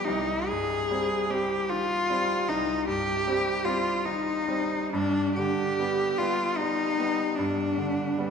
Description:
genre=classical, romantic duo for cello and grand piano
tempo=44-52 BPM (dotted quarters)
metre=12/8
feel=rubato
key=C minor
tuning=A4 = 440 Hz
part: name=rich cello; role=melody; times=0.0-8.3 s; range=D4 to Ab4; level=-26 LUFS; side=left 2 dB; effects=none
part: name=bright concert grand piano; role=accompaniment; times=0.0-8.3 s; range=C2 to C4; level=-30 LUFS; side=right 3 dB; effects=none
room=wet concert hall reverb, RT60 2.1 s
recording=recorded in a church or concert hall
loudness=-24 LUFS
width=side -6 dB against mid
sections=0.0-8.3 A section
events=none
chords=0.1 Cm; 4.9 G

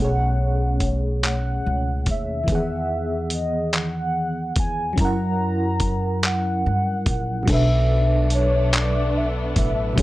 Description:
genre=slow six-eight R&B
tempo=48 BPM (dotted quarters)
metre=6/8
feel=straight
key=B minor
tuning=A4 = 440 Hz
part: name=warm velvety synth lead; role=melody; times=0.0-10.0 s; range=C#5 to A#5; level=-26 LUFS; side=equal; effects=chorus
part: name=FM electric piano with tremolo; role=accompaniment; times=0.0-10.0 s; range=B2 to F#5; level=-26 LUFS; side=right 1 dB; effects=phaser
part: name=upright bass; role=bass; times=0.0-10.0 s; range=A1 to G2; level=-23 LUFS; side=equal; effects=none
part: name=dusty soul sampler-style drum kit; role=drums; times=0.8-10.0 s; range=crash cymbal, handclaps, hi-hat, kick drum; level=-24 LUFS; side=equal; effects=none
part: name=warm studio string section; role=sustained chords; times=7.5-10.0 s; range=A3 to D4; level=-31 LUFS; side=left 2 dB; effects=none
room=little or no reverb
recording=dry, gritty hardware recording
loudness=-19 LUFS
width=side -17 dB against mid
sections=0.0-7.5 A section; 7.5-10.0 B section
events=none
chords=0.0 B13; 2.5 Emaj9; 5.0 F#7; 7.5 Bm7

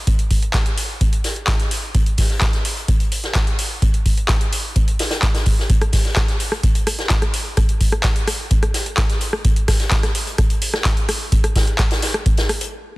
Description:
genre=house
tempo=128 BPM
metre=4/4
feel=straight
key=none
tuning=none
part: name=booming analog drum machine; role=drums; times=0.1-12.7 s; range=handclaps, hi-hat, rim click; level=-23 LUFS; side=equal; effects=none
part: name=electronic kick drum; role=drums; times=0.1-12.4 s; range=none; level=-17 LUFS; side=equal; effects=none
part: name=vintage drum kit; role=drums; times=0.1-12.7 s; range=hi-hat, snare drum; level=-28 LUFS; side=left 1 dB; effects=high-pass filter on hats, high-pass filter on snare, high-pass filter on room
room=small room ambience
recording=dense, heavily limited modern master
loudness=-16 LUFS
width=side -20 dB against mid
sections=0.0-13.0 A section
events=stop 12.7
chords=none

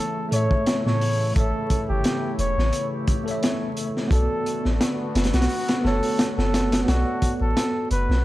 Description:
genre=trip hop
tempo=87 BPM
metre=4/4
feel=swing 55% on 16ths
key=B minor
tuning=A4 = 440 Hz
part: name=trumpet with bucket mute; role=melody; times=0.0-8.2 s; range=F#4 to C#5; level=-28 LUFS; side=equal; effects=vintage 12-bit sampler grit, tape echo
part: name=tine electric piano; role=accompaniment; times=0.0-8.2 s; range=A3 to E5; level=-29 LUFS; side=equal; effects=overdrive, fast stereo tremolo, harmonic tremolo, vintage 12-bit sampler grit, tape echo
part: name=warbly tape-like pad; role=sustained chords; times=0.0-8.2 s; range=C#3 to F#4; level=-31 LUFS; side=left 1 dB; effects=chorus, built-in reverb
part: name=soft 808-style bass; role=bass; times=0.3-8.2 s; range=E1 to A2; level=-23 LUFS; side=equal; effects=none
part: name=crunchy breakbeat drum kit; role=drums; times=0.3-8.2 s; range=hi-hat, kick drum, snare drum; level=-24 LUFS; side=equal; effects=none
room=light reverb, small room reverb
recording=echo-heavy mix, vinyl crackle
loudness=-20 LUFS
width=side -16 dB against mid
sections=0.0-8.2 A section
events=none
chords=0.0 A; 4.1 Bm7

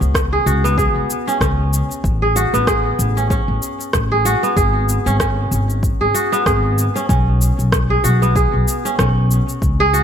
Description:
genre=organic downtempo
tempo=95 BPM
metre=4/4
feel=swing 57% on 16ths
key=unclear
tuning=A4 = 436 Hz
part: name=kora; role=arpeggios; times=0.0-10.0 s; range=B3 to G#4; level=-18 LUFS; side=right 1 dB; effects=ping-pong delay
part: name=upright bass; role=bass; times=0.0-10.0 s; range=G#1 to C#2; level=-17 LUFS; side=equal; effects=none
part: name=electronic cabasa and rim click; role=drums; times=0.0-10.0 s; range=none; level=-23 LUFS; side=equal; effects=none
part: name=electronic kick drum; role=drums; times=0.1-9.8 s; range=none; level=-20 LUFS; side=equal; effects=overdrive
room=light reverb, studio reverb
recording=faint mains hum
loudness=-14 LUFS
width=side -8 dB against mid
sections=0.0-10.0 A section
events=none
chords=0.0 C#7sus4; 2.0 Amaj9; 4.6 G#7sus4; 7.1 B5

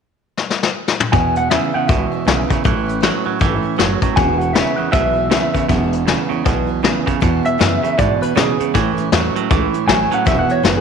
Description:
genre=rockabilly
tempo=158 BPM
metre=4/4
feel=swing 61% on 8ths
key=E major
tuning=A4 = 440 Hz
part: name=vintage brush drum kit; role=drums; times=0.4-10.8 s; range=hi-hat, kick drum, snare drum, toms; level=-18 LUFS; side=left 4 dB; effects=none
part: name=electric guitar through a small old amp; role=melody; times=1.1-10.8 s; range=G#4 to G#5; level=-19 LUFS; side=equal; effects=tape echo
part: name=picked steel-string acoustic guitar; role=accompaniment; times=1.1-10.8 s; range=E2 to E4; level=-26 LUFS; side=left 9 dB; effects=none
part: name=clean electric guitar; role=riff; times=1.1-10.8 s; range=E2 to F#3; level=-19 LUFS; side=right 11 dB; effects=none
part: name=upright bass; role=bass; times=1.1-10.8 s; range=E1 to B2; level=-22 LUFS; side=equal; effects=none
room=moderate echo chamber reverb, RT60 1.5 s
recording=1960s-style stereo with parts hard left and right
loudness=-14 LUFS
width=side -6 dB against mid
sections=0.0-1.1 A section; 1.1-7.2 B section; 7.2-10.8 C section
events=drum fill 0.4-1.1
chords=0.0 N.C.; 1.1 E; 2.6 A; 4.2 E; 8.7 A; 10.3 E

